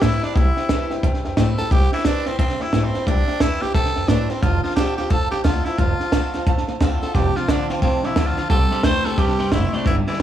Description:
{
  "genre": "rockabilly",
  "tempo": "177 BPM",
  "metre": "4/4",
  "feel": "swing 62% on 8ths",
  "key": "C major",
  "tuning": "A4 = 440 Hz",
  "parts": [
    { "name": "growling tenor saxophone", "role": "melody", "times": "0.0-10.2 s", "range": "C4 to C5", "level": "-24 LUFS", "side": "equal", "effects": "none" },
    { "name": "honky-tonk upright piano", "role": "accompaniment", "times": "0.0-10.2 s", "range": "B4 to A5", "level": "-30 LUFS", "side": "right 6 dB", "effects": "none" },
    { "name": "picked swing-style acoustic guitar", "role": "accompaniment", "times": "0.0-10.2 s", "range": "F2 to F4", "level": "-30 LUFS", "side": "left 3 dB", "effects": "none" },
    { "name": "upright bass", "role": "bass", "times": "0.0-10.2 s", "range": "F1 to A2", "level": "-23 LUFS", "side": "equal", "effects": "none" },
    { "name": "compact cocktail drum kit", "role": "drums", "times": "0.0-10.2 s", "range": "hi-hat, kick drum, snare drum", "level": "-21 LUFS", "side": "equal", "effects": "none" },
    { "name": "electric guitar at the edge of break-up", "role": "riff", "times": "7.1-10.2 s", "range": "F2 to A3", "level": "-24 LUFS", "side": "right 2 dB", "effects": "analog chorus" }
  ],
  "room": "small room ambience",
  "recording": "none",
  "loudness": "-17 LUFS",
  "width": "side -11 dB against mid",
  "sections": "0.0-10.2 A section",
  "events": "none",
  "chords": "0.0 C6; 4.4 F6; 8.5 C6"
}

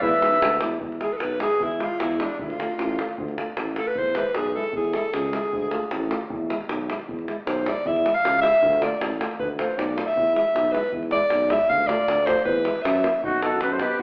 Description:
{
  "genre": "balkan folk, Balkan brass band",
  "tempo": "155 BPM",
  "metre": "2/4",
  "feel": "straight",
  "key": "E phrygian dominant",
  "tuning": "A4 = 441 Hz",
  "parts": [
    { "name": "warm flugelhorn", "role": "melody", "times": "0.0-0.6, 13.2-14.0 s", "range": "F#4 to E5", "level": "-24 LUFS", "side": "equal", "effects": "none" },
    { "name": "warm alto saxophone", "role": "second line", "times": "0.0-14.0 s", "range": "D4 to F5", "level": "-25 LUFS", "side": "equal", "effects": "none" },
    { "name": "clear trombone", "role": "accompaniment", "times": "0.0-13.9 s", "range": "D#4 to F4", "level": "-37 LUFS", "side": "equal", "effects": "none" },
    { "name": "mellow euphonium", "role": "accompaniment", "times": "0.0-13.9 s", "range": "G#3 to B3", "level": "-38 LUFS", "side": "equal", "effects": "none" },
    { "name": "mellow tuba", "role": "bass", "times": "0.0-14.0 s", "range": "A1 to F#2", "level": "-32 LUFS", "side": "equal", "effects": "none" },
    { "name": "davul", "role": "percussion", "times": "0.0-14.0 s", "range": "none", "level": "-33 LUFS", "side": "equal", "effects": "none" }
  ],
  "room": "wet large studio reverb, RT60 1.4 s",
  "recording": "band playing live in one room, AM radio sound",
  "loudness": "-24 LUFS",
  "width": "mono",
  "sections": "0.8-13.2 A section",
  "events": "speeding up 0.0-14.0; alto saxophone solo 0.8-13.2",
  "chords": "0.0 E; 2.4 Dm; 4.0 E; 5.5 Dm; 6.3 E; 8.6 Dm; 10.2 E; 11.7 Dm; 12.5 E; 12.8 F#7; 13.2 B"
}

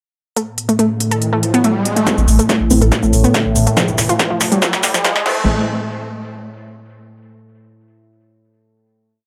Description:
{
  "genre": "driving peak-time techno",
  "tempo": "141 BPM",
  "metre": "4/4",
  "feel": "straight",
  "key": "A minor",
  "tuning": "A4 = 441 Hz",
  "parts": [
    { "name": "analog pluck", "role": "riff", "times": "0.4-5.5 s", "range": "F3 to A4", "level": "-21 LUFS", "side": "equal", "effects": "chorus, overdrive, sidechain pumping, tape echo" },
    { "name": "analog drone", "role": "drone", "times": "0.6-5.5 s", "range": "A2", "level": "-23 LUFS", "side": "equal", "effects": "chorus, sidechain pumping" },
    { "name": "techno drum kit", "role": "drums", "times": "0.4-5.3 s", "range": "crash cymbal, hi-hat, shaker, snare drum", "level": "-21 LUFS", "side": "equal", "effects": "high-pass filter on hats, studio ambience, high-pass filter on snare, high-pass filter on perc, high-pass filter on cymbals" },
    { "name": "riser", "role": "sound effects", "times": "1.0-5.5 s", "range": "none", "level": "-25 LUFS", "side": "equal", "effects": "none" },
    { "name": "rave stab", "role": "stabs", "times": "2.1-5.4 s", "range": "C3 to C4", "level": "-24 LUFS", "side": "equal", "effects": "chorus, built-in reverb, vintage 12-bit sampler grit, sidechain pumping, tape echo" },
    { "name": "electronic kick drum", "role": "drums", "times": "2.1-5.3 s", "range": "none", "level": "-23 LUFS", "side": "equal", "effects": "high-pass filter on kick, studio ambience" },
    { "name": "warm sub bass", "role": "bass", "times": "2.2-5.5 s", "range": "F1 to A1", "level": "-18 LUFS", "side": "equal", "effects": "tube saturation, sidechain pumping, low-pass filter" }
  ],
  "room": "light reverb",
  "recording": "dry, gritty hardware recording, high-pass filter",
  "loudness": "-15 LUFS",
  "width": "mono",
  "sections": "0.4-2.1 intro; 2.1-5.5 build; 5.5-7.2 final hit",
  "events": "filter sweep on synth arpeggio sound 0.4-2.1, 2.1-5.5; riser 1.0-2.1, 2.1-5.5; build-up 2.1-5.5; drum fill 2.1-5.5; filter sweep on synth stab 2.1-5.5; filter sweep 2.1-5.5",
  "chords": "0.4 N.C.; 2.1 Am; 3.8 N.C.; 5.3 Am; 5.5 N.C."
}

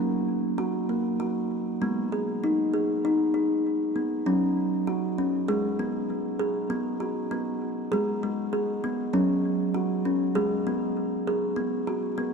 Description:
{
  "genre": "world meditative, meditative tuned percussion",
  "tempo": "98 BPM",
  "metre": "4/4",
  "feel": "swing 55% on 16ths",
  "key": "G# minor",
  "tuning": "A4 = 441 Hz",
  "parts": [
    { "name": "kalimba", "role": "solo", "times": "0.0-12.3 s", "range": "F#3 to G#4", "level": "-24 LUFS", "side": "equal", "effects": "ping-pong delay" }
  ],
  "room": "wet cathedral reverb, RT60 4.9 s",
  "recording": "dark, warm production",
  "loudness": "-24 LUFS",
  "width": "side -5 dB against mid",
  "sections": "0.0-4.3 A section; 4.3-12.3 B section",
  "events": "none",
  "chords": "0.0 F#; 1.8 G#m; 4.3 F#5; 5.5 G#m; 6.7 B5; 7.9 G#m; 9.1 F#5; 10.4 G#m; 11.6 B5"
}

